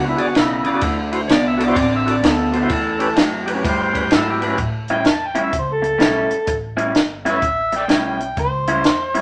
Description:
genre	electric blues shuffle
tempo	127 BPM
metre	4/4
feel	swing 65% on 8ths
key	A mixolydian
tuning	A4 = 440 Hz
part	overdriven tonewheel organ	accompaniment	0.0-4.6 s	C#4 to E5	-23 LUFS	equal	slow rotary speaker
part	electric guitar through a small old amp	riff	0.0-9.2 s	E2 to E4	-23 LUFS	equal	none
part	upright bass	bass	0.0-9.2 s	G1 to A2	-32 LUFS	equal	none
part	compact cocktail drum kit	drums	0.2-9.2 s	hi-hat, kick drum, ride cymbal, snare drum	-22 LUFS	equal	none
part	overdriven harmonica	melody	4.9-9.2 s	A4 to A5	-23 LUFS	equal	none
room	wet studio reverb, RT60 0.7 s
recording	none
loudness	-18 LUFS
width	mono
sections	0.0-4.6 A section; 4.6-9.2 B section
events	none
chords	0.0 E7; 0.8 D7; 2.7 A7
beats	0.35 | 0.82 1.29 1.76 2.23 | 2.71 3.18 3.65 4.12 | 4.59 5.06 5.54 6.01 | 6.48 6.95 7.43 7.90 | 8.37 8.85

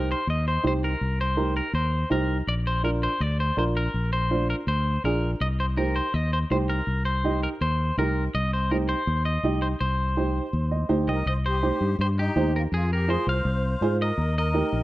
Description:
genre	latin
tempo	164 BPM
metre	4/4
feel	straight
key	C minor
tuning	A4 = 440 Hz
part	clean electric guitar	melody	0.0-14.8 s	G4 to F5	-28 LUFS	left 1 dB	spring reverb
part	warm upright piano	accompaniment	0.0-14.8 s	D4 to G5	-26 LUFS	right 3 dB	none
part	fingered electric bass	bass	0.0-14.8 s	Bb1 to Ab2	-25 LUFS	left 1 dB	none
part	musette accordion	second line	11.1-14.8 s	Eb4 to C5	-33 LUFS	left 2 dB	none
room	light reverb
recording	dry, close 1970s-style studio recording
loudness	-22 LUFS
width	side -17 dB against mid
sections	0.0-11.3 A section; 11.3-14.8 B section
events	upright piano fill 10.5-11.3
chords	0.0 Cm; 2.5 Bb; 5.4 Cm; 12.7 Fm; 14.2 Eb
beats	0.28 0.64 | 1.01 1.38 1.75 2.11 | 2.48 2.85 3.21 3.58 | 3.94 4.31 4.68 5.04 | 5.41 5.78 6.14 6.51 | 6.88 7.25 7.61 7.98 | 8.34 8.71 9.08 9.44 | 9.81 10.17 10.54 10.90 | 11.27 11.63 12.00 12.36 | 12.73 13.09 13.46 13.82 | 14.18 14.55

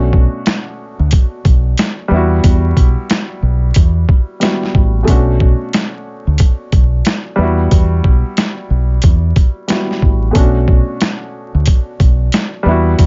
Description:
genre	hip hop, boom-bap hip-hop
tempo	91 BPM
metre	4/4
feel	swing 62% on 16ths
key	B minor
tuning	A4 = 437 Hz
part	dark grand piano	accompaniment	0.0-13.1 s	B2 to F#4	-22 LUFS	equal	cassette tape, high-pass filter, low-pass filter
part	deep dub fingered electric bass	bass	0.0-13.1 s	A1 to E2	-16 LUFS	equal	none
part	boom bap sampler-style drum kit	drums	0.1-13.1 s	hi-hat, kick drum, snare drum	-14 LUFS	equal	overdrive, vintage 12-bit sampler grit
room	little or no reverb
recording	vinyl crackle, nothing above 7.5 kHz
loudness	-13 LUFS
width	mono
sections	0.0-13.1 A section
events	none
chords	0.0 Bm7; 2.1 Emadd9; 5.1 Bm7; 7.4 Emadd9; 10.3 Bm7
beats	0.46 1.12 1.78 | 2.44 3.10 3.76 4.42 | 5.08 5.74 6.39 7.05 | 7.71 8.37 9.03 9.69 | 10.35 11.01 11.67 12.33 | 12.99

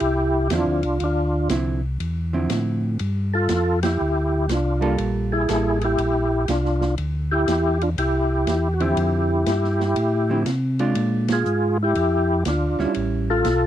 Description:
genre	soul jazz organ trio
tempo	120 BPM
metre	4/4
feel	swing 67% on 8ths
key	D minor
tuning	A4 = 441 Hz
part	percussive tonewheel organ	melody	0.0-13.7 s	D4 to A4	-21 LUFS	equal	slow rotary speaker, overdrive, chorus vibrato
part	mellow tonewheel organ	bass	0.0-13.7 s	A1 to C3	-23 LUFS	equal	slow rotary speaker
part	open jazz drum kit	drums	0.0-13.6 s	hi-hat, ride cymbal, snare drum	-31 LUFS	right 2 dB	none
part	vintage hollow-body jazz guitar	accompaniment	0.5-13.4 s	D3 to A4	-25 LUFS	right 3 dB	none
room	little or no reverb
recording	dry, close 1970s-style studio recording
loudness	-19 LUFS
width	side -11 dB against mid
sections	0.0-13.7 A section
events	band accent 3.7, 11.2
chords	0.0 Dm9; 3.0 Gm9; 7.0 Dm9; 11.0 Bb7; 13.0 A7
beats	0.01 0.51 | 1.00 1.50 2.00 2.50 | 2.99 3.49 3.99 4.49 | 4.99 5.48 5.98 6.48 | 6.98 7.47 7.97 8.47 | 8.97 9.47 9.97 10.46 | 10.96 11.46 11.96 12.46 | 12.96 13.46

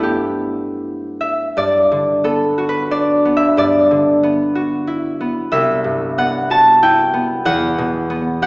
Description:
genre	classical, solo harp piece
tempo	92 BPM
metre	3/4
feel	uneven beats, rubato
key	G major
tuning	A4 = 440 Hz
part	concert harp	solo	0.0-8.5 s	C2 to A5	-14 LUFS	equal	none
room	wet recital hall reverb, RT60 1.5 s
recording	heard from further back in the room, small speaker sound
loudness	-13 LUFS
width	side -28 dB against mid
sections	0.0-1.6 A section; 1.6-8.5 B section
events	none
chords	0.0 G69; 1.6 Gmaj7; 3.6 Em9/G; 5.5 Cmaj7#11; 7.5 Emadd9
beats	0.03 0.82 | 1.57 2.25 2.92 | 3.58 4.23 4.88 | 5.51 6.17 6.82 | 7.46 8.10

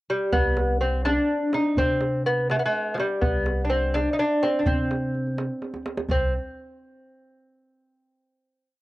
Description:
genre	Persian modal ensemble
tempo	83 BPM (dotted quarters)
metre	6/8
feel	straight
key	C avaz esfahan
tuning	A4 = 440 Hz
part	lute	melody	0.1-6.3 s	F3 to Eb4	-23 LUFS	equal	cassette tape
part	upright bass	bass	0.3-6.3 s	C2 to C3	-27 LUFS	equal	none
part	tombak	percussion	0.3-6.3 s	none	-29 LUFS	right 1 dB	none
room	moderate booth ambience, RT60 0.3 s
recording	home recording on cassette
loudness	-22 LUFS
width	side -17 dB against mid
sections	0.0-0.3 pickup bar; 0.3-6.1 A section; 6.1-7.5 final note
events	drum fill 5.6-6.1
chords	none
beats	| 0.34 1.05 | 1.77 2.50 | 3.21 3.94 | 4.66 5.37 | 6.09

